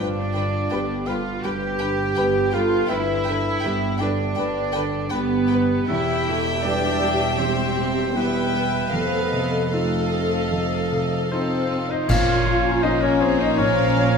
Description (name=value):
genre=cinematic, emotional film score for orchestra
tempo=75-83 BPM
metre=4/4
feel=rubato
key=unclear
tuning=A4 = 441 Hz
part: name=warm symphonic violin section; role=melody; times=0.0-14.2 s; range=F5 to G5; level=-30 LUFS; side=left 3 dB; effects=none
part: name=rich studio violin section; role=second line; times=0.0-14.2 s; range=Bb3 to E5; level=-30 LUFS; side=left 4 dB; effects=none
part: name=warm oboe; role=second line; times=0.0-14.2 s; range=Ab4 to G5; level=-30 LUFS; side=right 2 dB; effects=none
part: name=dark studio viola section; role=accompaniment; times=0.0-14.2 s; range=C4 to B4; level=-29 LUFS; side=right 1 dB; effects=none
part: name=warm grand piano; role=accompaniment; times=0.0-14.2 s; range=E2 to F5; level=-26 LUFS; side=left 1 dB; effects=none
part: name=warm French horn section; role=sustained chords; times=0.0-14.2 s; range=C4 to B4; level=-29 LUFS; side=left 5 dB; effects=none
part: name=concert harp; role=arpeggios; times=0.0-14.2 s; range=E2 to E5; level=-35 LUFS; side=left 9 dB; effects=none
part: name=warm symphonic cello section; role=bass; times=0.0-14.2 s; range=Bb2 to G4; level=-26 LUFS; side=right 4 dB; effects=none
part: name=warm symphonic double bass section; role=bass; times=0.0-14.2 s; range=E1 to Bb1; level=-28 LUFS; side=right 4 dB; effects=none
part: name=cymbal swell, clash cymbals and concert bass drum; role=percussion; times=8.9-13.5 s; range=none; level=-27 LUFS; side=equal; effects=none
part: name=hollow concert flute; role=second line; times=11.3-14.2 s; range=C5 to F5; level=-29 LUFS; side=left 2 dB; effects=none
room=moderate scoring stage reverb, RT60 1.9 s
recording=minimal, uncompressed stereo recording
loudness=-19 LUFS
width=side -5 dB against mid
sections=0.0-12.1 A section; 12.1-14.2 B section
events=band accent 12.1-12.8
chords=0.0 G; 5.9 Em; 8.9 F7; 12.1 Bbm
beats=| 0.00 0.72 1.45 2.18 | 2.91 3.65 4.39 5.13 | 5.90 6.65 7.40 8.16 | 8.94 9.73 10.53 11.32 | 12.09 12.84 13.59